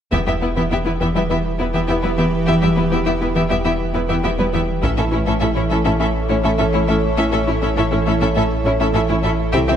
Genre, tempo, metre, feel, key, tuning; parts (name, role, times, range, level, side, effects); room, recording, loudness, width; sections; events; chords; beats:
cinematic, hybrid orchestral and electronic film score; 102 BPM; 4/4; straight; E minor; A4 = 440 Hz
rich symphonic violin section; second line; 0.1-9.7 s; E4 to E5; -24 LUFS; left 4 dB
warm symphonic viola section; accompaniment; 0.1-9.7 s; B3 to E4; -22 LUFS; right 1 dB
evolving wavetable pad; sustained chords; 1.1-9.8 s; E3 to C#5; -22 LUFS; right 1 dB; chorus, built-in reverb
woody wave-folded pluck; arpeggios; 0.1-9.8 s; C3 to A4; -25 LUFS; left 3 dB; chorus, tape echo
warm sub bass; bass; 0.1-9.8 s; E1 to C2; -24 LUFS; equal
warm symphonic cello section; bass; 0.1-9.7 s; E2 to C3; -24 LUFS; right 3 dB
taiko ensemble; drums; 0.1-1.3, 4.8-6.0, 9.5-9.8 s; -28 LUFS; equal
moderate scoring stage reverb, RT60 1.8 s; -16 LUFS; side -9 dB against mid
0.1-9.8 A section
0.1 Em; 4.8 A
| 0.13 0.71 1.30 1.89 | 2.48 3.07 3.65 4.24 | 4.83 5.42 6.01 6.60 | 7.18 7.77 8.36 8.95 | 9.54